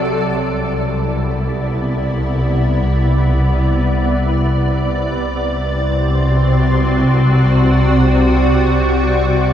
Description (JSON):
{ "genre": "ambient", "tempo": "free time", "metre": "none", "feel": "none", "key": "C lydian", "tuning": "A4 = 440 Hz", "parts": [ { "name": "evolving wavetable pad", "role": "sustained chords", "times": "0.0-9.5 s", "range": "C3 to D5", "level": "-16 LUFS", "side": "equal", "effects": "ensemble chorus, built-in reverb, shimmer reverb" }, { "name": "dark studio double bass section", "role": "bass", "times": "0.0-9.5 s", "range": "C2", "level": "-16 LUFS", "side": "equal", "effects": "none" } ], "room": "wet huge ambient reverb, RT60 7.0 s", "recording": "dreamy mix soaked in reverb", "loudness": "-13 LUFS", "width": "side -10 dB against mid", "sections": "0.0-9.5 A section", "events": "fade-in on ambient pad 0.0-9.5", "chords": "0.0 Cmaj9; 5.2 D/C" }